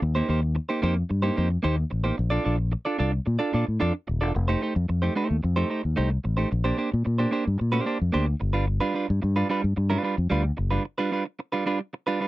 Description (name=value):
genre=disco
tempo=111 BPM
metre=4/4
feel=straight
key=unclear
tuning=A4 = 441 Hz
part: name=clean electric guitar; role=accompaniment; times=0.0-12.3 s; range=G3 to D5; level=-26 LUFS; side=right 3 dB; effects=none
part: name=fingered electric bass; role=bass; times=0.0-10.8 s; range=Eb1 to Bb2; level=-24 LUFS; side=left 1 dB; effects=none
room=little or no reverb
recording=dry, close 1970s-style studio recording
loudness=-23 LUFS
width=side -17 dB against mid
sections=0.0-4.3 A section; 4.3-12.3 B section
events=break 10.9-12.3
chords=0.0 Eb6; 2.2 Bbmaj7; 4.3 F9; 6.5 Bb69; 8.4 G7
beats=| 0.02 0.56 1.10 1.64 | 2.18 2.72 3.27 3.81 | 4.35 4.89 5.43 5.97 | 6.52 7.06 7.60 8.14 | 8.69 9.23 9.77 10.31 | 10.85 11.40 11.94